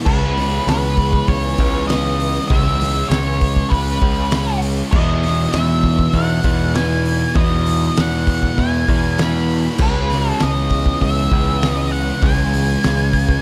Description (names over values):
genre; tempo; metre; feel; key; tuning
rock, shoegaze and dream pop; 99 BPM; 4/4; straight; unclear; A4 = 435 Hz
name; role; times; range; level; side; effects
direct-recorded clean electric guitar; riff; 0.0-13.4 s; E2 to G#4; -28 LUFS; equal; none
overdriven electric guitar; riff; 0.0-13.4 s; E2 to C#4; -28 LUFS; equal; none
thick fuzz guitar; riff; 0.0-13.4 s; E2 to C#4; -26 LUFS; equal; distortion, subtle chorus
octave-fuzz lead guitar; melody; 0.1-13.4 s; B4 to B5; -25 LUFS; equal; distortion, slapback echo
growling fingered electric bass; bass; 0.1-13.4 s; C#2 to E2; -22 LUFS; equal; overdrive
loose indie drum kit; drums; 0.1-13.4 s; crash cymbal, hi-hat, kick drum, snare drum; -22 LUFS; equal; none
room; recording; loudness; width
small room ambience; none; -17 LUFS; mono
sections
0.0-13.4 A section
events
none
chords
0.1 C#m7; 4.9 Emaj7; 9.8 C#m7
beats
| 0.07 0.67 1.28 1.89 | 2.50 3.11 3.72 4.33 | 4.93 5.54 6.15 6.76 | 7.37 7.97 8.58 9.19 | 9.80 10.40 11.01 11.62 | 12.23 12.84